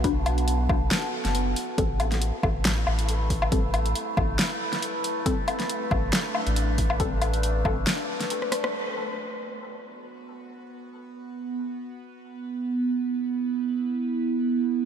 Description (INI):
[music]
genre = deep dubstep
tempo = 138 BPM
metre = 4/4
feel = swing 55% on 16ths, half-time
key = B minor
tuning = A4 = 438 Hz
[part]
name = overtone-sweeping drone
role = sustained chords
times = 0.0-14.9 s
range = A3 to B4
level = -29 LUFS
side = right 2 dB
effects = chorus, built-in reverb, phaser
[part]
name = filtered dub chord stab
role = stabs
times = 0.0-7.1 s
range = F#3 to B4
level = -34 LUFS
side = left 3 dB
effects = phaser, wide subtle chorus, dub echo
[part]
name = soft dub sub bass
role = bass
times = 0.0-7.9 s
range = F#1 to B1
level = -26 LUFS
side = equal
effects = none
[part]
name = deep house drum kit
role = drums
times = 0.0-8.7 s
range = hi-hat, rim click, snare drum, woodblock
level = -28 LUFS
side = left 1 dB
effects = overdrive, small room reverb
[part]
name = electronic kick drum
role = drums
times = 0.0-7.7 s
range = none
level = -28 LUFS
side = equal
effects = overdrive, small room reverb
[sound]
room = moderate huge ambient reverb, RT60 4.3 s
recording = dreamy mix soaked in reverb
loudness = -23 LUFS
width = side -8 dB against mid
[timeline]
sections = 0.0-8.7 A section; 8.7-14.9 B section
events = filter sweep on synth stab 0.0-8.7; drum fill 8.4-8.7; band accent 8.6; filter sweep on synth drone 8.7-14.9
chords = 0.0 B5; 1.8 A5; 8.7 B5